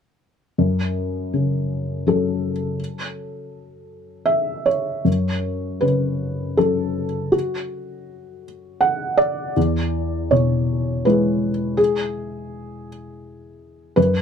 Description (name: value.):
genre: neoclassical minimalist piano.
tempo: 81 BPM.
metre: 3/4.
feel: rubato.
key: F# minor.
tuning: A4 = 440 Hz.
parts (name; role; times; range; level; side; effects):
felt-muted upright piano; solo; 0.6-14.2 s; E2 to F#5; -19 LUFS; equal; none.
room: light reverb.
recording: close, detailed microphones.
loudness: -19 LUFS.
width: side -7 dB against mid.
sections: 0.6-5.1 A section; 5.1-14.2 B section.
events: none.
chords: 0.6 F#m; 9.6 E.